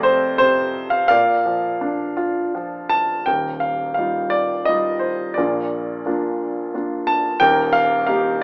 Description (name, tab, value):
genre	classical, lyrical solo piano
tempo	86 BPM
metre	3/4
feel	rubato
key	Bb major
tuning	A4 = 439 Hz
part	warm grand piano	solo	0.0-8.4 s	Eb1 to A5	-20 LUFS	equal	none
room	light reverb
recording	AM radio sound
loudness	-20 LUFS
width	mono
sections	0.0-3.3 A section; 3.3-8.4 B section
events	none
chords	0.0 F; 1.1 Bb; 3.3 Ebadd9; 5.4 Bb; 7.4 Eb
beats	0.39 | 1.10 1.81 2.54 | 3.27 3.98 4.69 | 5.38 6.07 6.75 | 7.42 8.08